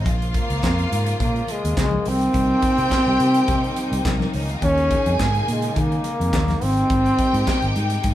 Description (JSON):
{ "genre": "disco", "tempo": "105 BPM", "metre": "4/4", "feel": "straight", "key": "unclear", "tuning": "A4 = 440 Hz", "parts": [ { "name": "warm symphonic violin section", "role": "second line", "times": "0.0-8.1 s", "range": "Bb3 to Ab5", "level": "-28 LUFS", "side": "left 2 dB", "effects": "none" }, { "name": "clear studio string section", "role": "sustained chords", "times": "0.0-8.1 s", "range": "C3 to F4", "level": "-30 LUFS", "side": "equal", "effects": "none" }, { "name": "fingered electric bass", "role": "bass", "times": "0.0-8.1 s", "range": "Ab1 to Eb3", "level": "-23 LUFS", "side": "equal", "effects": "none" }, { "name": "congas", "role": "percussion", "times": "0.0-8.1 s", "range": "none", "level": "-32 LUFS", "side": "left 4 dB", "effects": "none" }, { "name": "modern studio drum kit", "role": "drums", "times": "0.1-8.1 s", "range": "handclaps, hi-hat, kick drum, snare drum", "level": "-25 LUFS", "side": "equal", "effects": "none" }, { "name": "warm trombone", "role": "melody", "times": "0.4-7.8 s", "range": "Ab3 to Db4", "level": "-21 LUFS", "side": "equal", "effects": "none" } ], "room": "wet studio reverb, RT60 0.7 s", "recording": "band playing live in one room", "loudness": "-18 LUFS", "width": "side -13 dB against mid", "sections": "0.0-8.1 A section", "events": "none", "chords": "0.1 Bbm7; 2.1 Cm7; 4.6 Eb7sus4; 6.6 Abmaj7" }